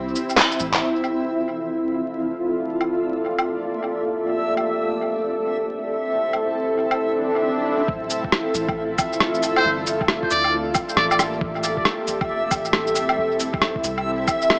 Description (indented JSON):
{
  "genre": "future garage",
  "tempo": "136 BPM",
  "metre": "4/4",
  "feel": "swing 63% on 16ths",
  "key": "D minor",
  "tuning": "A4 = 439 Hz",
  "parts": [
    { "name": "granular cloud pad", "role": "sustained chords", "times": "0.0-14.6 s", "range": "Bb3 to E5", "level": "-26 LUFS", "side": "equal", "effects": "built-in reverb, sidechain pumping" },
    { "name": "soft 808-style bass", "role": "bass", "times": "0.0-0.8, 7.9-14.3 s", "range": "D1 to D2", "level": "-38 LUFS", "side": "equal", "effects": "sidechain pumping" },
    { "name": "electronic shaker, rim click, handclaps, woodblock and cabasa", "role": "drums", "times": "0.2-14.6 s", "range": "none", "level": "-24 LUFS", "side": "equal", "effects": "small room ambience, analog delay" },
    { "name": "backwards swelling texture", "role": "texture", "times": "2.1-14.6 s", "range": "E5", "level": "-30 LUFS", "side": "equal", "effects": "built-in reverb" },
    { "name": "swell", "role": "sound effects", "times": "7.2-7.9 s", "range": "none", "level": "-31 LUFS", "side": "equal", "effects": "none" },
    { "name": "electronic kick drum", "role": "drums", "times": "7.9-14.4 s", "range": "none", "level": "-32 LUFS", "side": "equal", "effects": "small room ambience" },
    { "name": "trumpet with metal mute", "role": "melody", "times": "9.6-11.2 s", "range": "C5 to D5", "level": "-25 LUFS", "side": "equal", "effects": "vintage 12-bit sampler grit, analog delay" }
  ],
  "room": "moderate plate reverb, RT60 1.9 s",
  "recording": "echo-heavy mix, vinyl crackle, small speaker sound",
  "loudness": "-22 LUFS",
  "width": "mono",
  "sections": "0.8-7.9 A section; 7.9-14.6 B section",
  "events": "break 0.0-0.8; drum fill 0.4-0.8; swell 7.2-7.9",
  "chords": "0.0 Fmaj7; 0.8 Dm9; 2.6 Gm9; 4.4 Am7; 6.1 Fmaj7; 7.9 Dm9; 9.6 Gm9; 11.4 Am7; 13.2 Fmaj7"
}